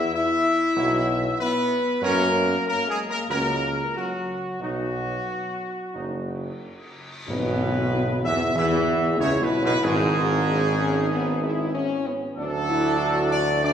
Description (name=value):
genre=classical, ceremonial fanfare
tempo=94 BPM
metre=4/4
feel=straight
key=E mixolydian from 7.3 s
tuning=A4 = 440 Hz
part: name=mellow trumpet section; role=melody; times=0.0-13.7 s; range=F#4 to E5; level=-25 LUFS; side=equal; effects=none
part: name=mellow French horn section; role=sustained chords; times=0.0-13.7 s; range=F#3 to G#4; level=-27 LUFS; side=left 2 dB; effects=none
part: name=clear tuba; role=bass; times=0.0-13.7 s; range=F#1 to F#2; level=-26 LUFS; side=right 2 dB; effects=none
part: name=clear trombone section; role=sustained chords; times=0.8-13.7 s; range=G#2 to E4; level=-30 LUFS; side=right 2 dB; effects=none
part: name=cymbal swell and tam-tam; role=percussion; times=4.6-9.8 s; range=none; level=-33 LUFS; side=left 3 dB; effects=none
room=wet recital hall reverb, RT60 1.8 s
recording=recorded in a church or concert hall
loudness=-21 LUFS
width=side -8 dB against mid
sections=0.0-7.3 A section; 7.3-13.7 B section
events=band accent 7.3-7.9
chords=0.0 E5; 2.0 F#; 4.6 B; 7.3 E/B; 12.4 D